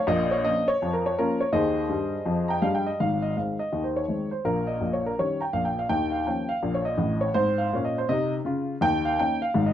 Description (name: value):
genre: jazz, stride piano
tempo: 165 BPM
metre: 4/4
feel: swing 63% on 8ths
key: Ab major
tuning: A4 = 440 Hz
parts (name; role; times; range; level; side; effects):
- warm upright piano; solo; 0.0-9.7 s; Ab1 to Bb5; -23 LUFS; equal; none
room: moderate club reverb, RT60 0.8 s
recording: dark, warm production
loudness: -23 LUFS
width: side -10 dB against mid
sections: 0.0-3.0 A section; 3.0-9.7 A section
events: upright piano fill 1.9-3.0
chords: 0.1 Bbm; 1.5 Ab/Eb; 2.3 Eb; 3.0 Ab; 4.4 Eb7/Bb; 5.9 Ebsus2; 7.4 Ab; 8.8 Eb5